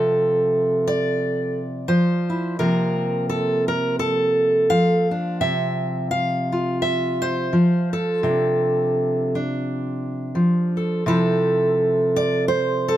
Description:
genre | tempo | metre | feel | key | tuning
folk, solo fingerstyle acoustic guitar | 85 BPM | 4/4 | swing 57% on 8ths | unclear | A4 = 441 Hz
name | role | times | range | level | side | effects
fingerpicked steel-string acoustic guitar | solo | 0.0-13.0 s | C3 to F5 | -18 LUFS | equal | none
room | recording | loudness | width
little or no reverb | close, detailed microphones | -19 LUFS | side -12 dB against mid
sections
0.0-13.0 A section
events
none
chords
0.0 F/C; 2.6 Bbmaj7(no3)/C; 5.4 F5/C; 8.2 F6/C; 11.1 Fmaj7/C

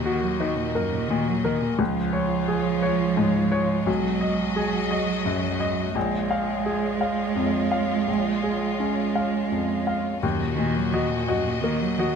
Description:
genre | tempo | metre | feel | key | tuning
neoclassical piano and strings | 57 BPM (dotted quarters) | 6/8 | rubato | Eb minor | A4 = 440 Hz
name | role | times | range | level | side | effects
rich cello | second line | 0.0-12.2 s | Gb2 to Ab3 | -26 LUFS | right 9 dB | none
clear baby grand piano | accompaniment | 0.0-12.2 s | Bb1 to F5 | -24 LUFS | left 4 dB | none
warm studio string section | sustained chords | 0.0-12.2 s | Ab3 to Eb5 | -30 LUFS | right 2 dB | none
room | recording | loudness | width
light reverb | close, detailed microphones | -22 LUFS | side -6 dB against mid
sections
0.0-10.2 A section; 10.2-12.2 B section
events
none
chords
0.0 Ebm; 1.8 Db; 3.9 Abm7/Cb; 6.0 Bbm7; 10.2 Ebm

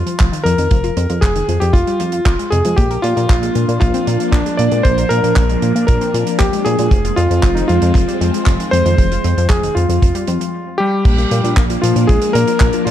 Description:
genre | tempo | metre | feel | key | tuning
italo disco | 116 BPM | 4/4 | straight | F dorian | A4 = 441 Hz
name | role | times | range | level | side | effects
warm electric grand piano | melody | 0.0-12.9 s | F3 to D5 | -18 LUFS | left 1 dB | digital delay
wide unison pluck | arpeggios | 0.0-12.9 s | F2 to Bb4 | -24 LUFS | left 3 dB | cassette tape, ping-pong delay
chorused synth bass | bass | 0.0-12.9 s | F1 to Bb2 | -18 LUFS | equal | none
damped 70s drum kit | drums | 0.1-12.9 s | crash cymbal, handclaps, hi-hat | -26 LUFS | right 3 dB | studio reverb
kick drum | drums | 0.2-12.7 s | none | -13 LUFS | equal | studio reverb
phased string machine | sustained chords | 3.0-12.9 s | F3 to D4 | -21 LUFS | left 1 dB | ensemble chorus, phaser
room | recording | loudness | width
light reverb, studio reverb | dark, warm production | -12 LUFS | side -11 dB against mid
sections
0.0-11.1 A section; 11.1-12.9 B section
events
none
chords
0.0 Fm; 2.8 Bb; 6.9 Fm; 11.1 Bb

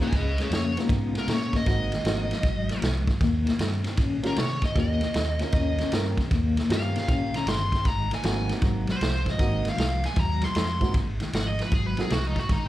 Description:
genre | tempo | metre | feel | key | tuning
electric blues shuffle | 155 BPM | 4/4 | swing 66% on 8ths | Ab mixolydian | A4 = 440 Hz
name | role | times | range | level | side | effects
smooth overdriven lead guitar | melody | 0.0-12.7 s | Eb4 to C6 | -31 LUFS | equal | slapback echo
dark grand piano | accompaniment | 0.0-12.1 s | Ab2 to Bb4 | -32 LUFS | right 2 dB | none
electric guitar through a small old amp | riff | 0.0-12.7 s | Ab2 to Db4 | -30 LUFS | left 3 dB | tremolo
vintage drum kit | drums | 0.0-12.6 s | kick drum, ride cymbal, snare drum | -27 LUFS | equal | none
vintage muted fingered electric bass | bass | 0.1-12.7 s | G1 to C3 | -29 LUFS | equal | none
room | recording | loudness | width
little or no reverb | live gig heard through the venue's PA, club reverb | -23 LUFS | side -14 dB against mid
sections
0.0-10.9 A section; 10.9-12.7 B section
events
lead electric guitar solo 10.9-12.7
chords
0.0 Db7; 1.7 Ab7; 3.2 Eb7; 7.9 Ab7

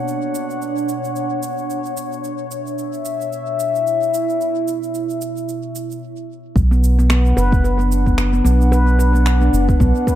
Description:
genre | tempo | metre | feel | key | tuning
organic downtempo | 111 BPM | 4/4 | swing 58% on 16ths | B minor | A4 = 439 Hz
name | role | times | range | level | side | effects
warbly tape-like pad | sustained chords | 0.0-10.2 s | B2 to F#5 | -22 LUFS | left 1 dB | chorus, built-in reverb, sidechain pumping
electronic shaker and finger snaps | drums | 0.1-10.2 s | none | -29 LUFS | right 2 dB | studio reverb
round analog bass | bass | 6.6-9.9 s | F#1 to B1 | -14 LUFS | equal | none
electronic kick drum | drums | 6.6-10.2 s | none | -17 LUFS | equal | studio reverb
handpan | arpeggios | 6.7-10.2 s | B3 to B4 | -20 LUFS | left 1 dB | tape echo
room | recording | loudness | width
moderate spring reverb, RT60 1.5 s | echo-heavy mix | -16 LUFS | side -12 dB against mid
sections
0.0-6.6 A section; 6.6-10.2 B section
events
stop 6.0-6.6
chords
0.0 Bmadd9; 6.6 Bm

